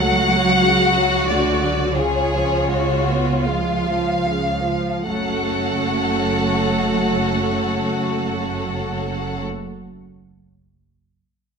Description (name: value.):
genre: classical, slow romantic movement for string orchestra.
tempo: 36-50 BPM.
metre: 4/4.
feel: rubato.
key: F# minor.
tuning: A4 = 439 Hz.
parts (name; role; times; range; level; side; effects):
rich chamber violin section; melody; 0.0-9.4 s; C#5 to F#5; -22 LUFS; left 2 dB; none.
rich chamber violin section; second line; 0.0-9.4 s; E#4 to A4; -25 LUFS; left 4 dB; none.
dark chamber viola section; accompaniment; 0.0-9.4 s; C#3 to F#4; -23 LUFS; right 1 dB; none.
dark chamber double bass section; bass; 0.0-9.4 s; F#1 to C#2; -26 LUFS; right 3 dB; none.
rich chamber cello section; bass; 0.0-9.4 s; C#3 to F#3; -26 LUFS; right 3 dB; none.
room: wet recital hall reverb, RT60 1.4 s.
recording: none.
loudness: -17 LUFS.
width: side -6 dB against mid.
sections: 0.0-5.1 A section; 5.1-11.6 B section.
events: slowing down 0.0-5.1.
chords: 0.0 F#m/C#; 2.0 C#7; 5.1 F#m.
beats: 0.66 1.99 3.46 | 5.07 6.69 8.33.